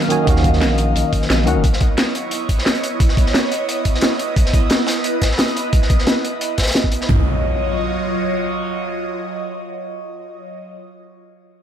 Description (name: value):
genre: liquid drum and bass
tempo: 176 BPM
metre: 4/4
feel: straight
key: unclear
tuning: A4 = 439 Hz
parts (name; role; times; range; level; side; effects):
- tine electric piano; accompaniment; 0.0-1.7 s; Eb3 to Ab5; -20 LUFS; moving between left 5 dB and right 4 dB; auto-pan, tape echo
- airy breathy pad; sustained chords; 0.0-10.6 s; Gb3 to F5; -22 LUFS; right 1 dB; chorus, phaser, sidechain pumping
- crunchy breakbeat drum kit; drums; 0.0-7.1 s; hi-hat, snare drum; -24 LUFS; equal; high-pass filter on hats, high-pass filter on snare, high-pass filter on room
- drum and bass drum kit; drums; 0.1-7.0 s; hi-hat, snare drum; -20 LUFS; equal; low-pass filter on hats, low-pass filter on snare, low-pass filter on room
- saturated sub bass; bass; 0.3-1.6 s; Eb1 to Eb2; -18 LUFS; equal; none
- drum and bass drum kit; drums; 0.3-7.2 s; kick drum, toms; -16 LUFS; equal; none
- impact; sound effects; 7.1-10.7 s; none; -22 LUFS; equal; none
room: light reverb, digital ambience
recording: none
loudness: -15 LUFS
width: side -9 dB against mid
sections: 0.0-7.1 A section; 7.1-9.8 B section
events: filter sweep on drum 0.0-7.1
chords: 0.0 Ebm9; 1.6 Dbm9; 7.1 Ebm9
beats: | 0.28 0.62 0.96 1.30 | 1.64 1.98 2.32 2.66 | 3.00 3.34 3.68 4.03 | 4.37 4.71 5.05 5.39 | 5.73 6.07 6.41 6.75 | 7.09 7.43 7.78 8.12 | 8.46 8.80 9.14 9.48